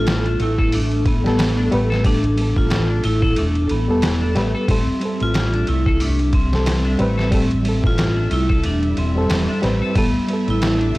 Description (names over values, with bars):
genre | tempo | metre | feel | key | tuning
trip hop | 91 BPM | 4/4 | swing 58% on 16ths | A minor | A4 = 436 Hz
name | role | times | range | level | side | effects
vibraphone with medium hard mallets | melody | 0.0-11.0 s | B3 to F4 | -23 LUFS | equal | dub echo
reed electric piano | accompaniment | 0.0-11.0 s | G3 to B4 | -24 LUFS | equal | tremolo, vintage 12-bit sampler grit, tape echo
string machine, cellos | sustained chords | 0.0-11.0 s | G3 to E5 | -27 LUFS | equal | ensemble chorus, vintage 12-bit sampler grit
fingered electric bass | bass | 0.0-11.0 s | E1 to C2 | -20 LUFS | equal | tube saturation
clean electric guitar | arpeggios | 0.1-11.0 s | E3 to A4 | -30 LUFS | left 2 dB | lush chorus, dub echo
trip hop sampler-style drum kit | drums | 0.1-11.0 s | hi-hat, kick drum, ride cymbal, snare drum | -22 LUFS | equal | studio ambience
room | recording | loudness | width
little or no reverb | dry, gritty hardware recording, vinyl crackle | -16 LUFS | side -19 dB against mid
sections
0.0-11.0 A section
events
none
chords
0.0 Gadd9/A; 4.7 Am7; 10.0 Gadd9/A